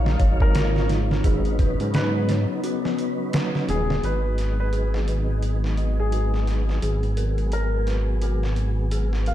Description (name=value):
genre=trip hop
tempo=86 BPM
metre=4/4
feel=swing 60% on 16ths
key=unclear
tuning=A4 = 440 Hz
part: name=tonewheel organ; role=accompaniment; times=0.0-9.3 s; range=F#3 to E#5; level=-31 LUFS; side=equal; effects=chorus vibrato, slow rotary speaker, harmonic tremolo, low-pass filter, tape echo
part: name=warbly tape-like pad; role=sustained chords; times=0.0-9.3 s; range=B2 to E#5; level=-32 LUFS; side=left 2 dB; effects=chorus, built-in reverb, phaser, vintage 12-bit sampler grit
part: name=dark detuned synth bell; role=arpeggios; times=0.0-9.3 s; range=E#4 to D#5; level=-35 LUFS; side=right 2 dB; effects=chorus, vintage 12-bit sampler grit, low-pass filter, tape echo
part: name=dark detuned saw bass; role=bass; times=0.0-9.3 s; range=D#1 to G#2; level=-23 LUFS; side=equal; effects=none
part: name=trip hop sampler-style drum kit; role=drums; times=0.1-9.3 s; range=hi-hat, kick drum, snare drum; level=-26 LUFS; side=equal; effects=high-pass filter on kick, high-pass filter on hats, high-pass filter on snare, high-pass filter on room
part: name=felt-muted upright piano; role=melody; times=0.4-9.3 s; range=G#4 to E#5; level=-31 LUFS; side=left 1 dB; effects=vintage 12-bit sampler grit, tape echo
room=light reverb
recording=none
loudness=-20 LUFS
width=side -12 dB against mid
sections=0.0-4.0 A section; 4.0-9.3 B section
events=break 2.6-4.0; filter sweep on synth bell 4.0-9.3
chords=0.0 D#m9/G#; 1.2 C#9sus4/G#; 4.0 B6/G#; 6.8 G#m9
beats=0.55 | 1.24 1.94 2.64 3.34 | 4.03 4.73 5.43 6.13 | 6.83 7.52 8.22 8.92